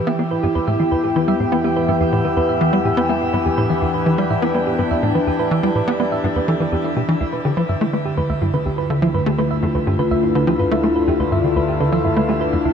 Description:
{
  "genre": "ambient, sequencer-driven space music",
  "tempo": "124 BPM",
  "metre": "4/4",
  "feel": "straight",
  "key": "E phrygian",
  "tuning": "A4 = 441 Hz",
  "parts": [
    { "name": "sweeping resonant pad", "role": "sustained chords", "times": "0.0-12.7 s", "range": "D3 to G4", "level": "-19 LUFS", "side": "left 2 dB", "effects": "chorus, phaser" },
    { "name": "thumb-piano-like synth pluck", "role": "arpeggios", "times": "0.0-12.7 s", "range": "D4 to E5", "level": "-24 LUFS", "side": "right 3 dB", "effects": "chorus, auto-pan, analog delay" },
    { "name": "analog drone", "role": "bass", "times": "0.9-12.7 s", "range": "D2 to E2", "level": "-34 LUFS", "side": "equal", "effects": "chorus" },
    { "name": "tight sequencer bass", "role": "riff", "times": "0.1-12.7 s", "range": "D2 to B3", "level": "-20 LUFS", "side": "equal", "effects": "analog chorus, analog delay" }
  ],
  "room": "wet shimmer reverb, RT60 6.8 s",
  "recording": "none",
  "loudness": "-16 LUFS",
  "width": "side -7 dB against mid",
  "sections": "0.0-12.7 A section",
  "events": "fade-in on synth drone 0.0-12.7",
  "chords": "0.0 Em; 7.2 Dm"
}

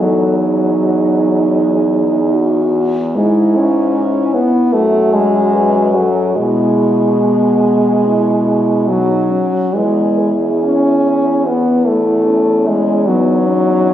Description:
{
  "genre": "classical, lyrical piece for horn quartet",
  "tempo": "73 BPM",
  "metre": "4/4",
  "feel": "uneven beats, rubato",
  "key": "E major",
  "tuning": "A4 = 440 Hz",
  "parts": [
    { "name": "mellow French horn", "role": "melody", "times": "0.0-13.9 s", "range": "B3 to B4", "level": "-20 LUFS", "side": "left 3 dB", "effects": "none" },
    { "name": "mellow French horn", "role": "second line", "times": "0.0-13.9 s", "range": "B3 to F#4", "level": "-18 LUFS", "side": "right 4 dB", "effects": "none" },
    { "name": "warm French horn", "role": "accompaniment", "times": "0.0-13.9 s", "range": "F#3 to C#4", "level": "-14 LUFS", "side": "left 1 dB", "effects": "none" },
    { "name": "clear French horn", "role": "bass", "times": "0.0-13.9 s", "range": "E2 to B2", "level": "-19 LUFS", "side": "equal", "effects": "none" }
  ],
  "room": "moderate scoring stage reverb, RT60 1.8 s",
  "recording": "recorded on a phone in the room, studio reverb, compression",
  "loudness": "-11 LUFS",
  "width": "side -11 dB against mid",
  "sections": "0.0-13.9 A section",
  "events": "none",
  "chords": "0.0 Emaj9; 3.2 E/G#; 4.7 F#madd9; 6.4 E/B; 8.1 B; 9.7 E; 13.1 Emaj7sus2"
}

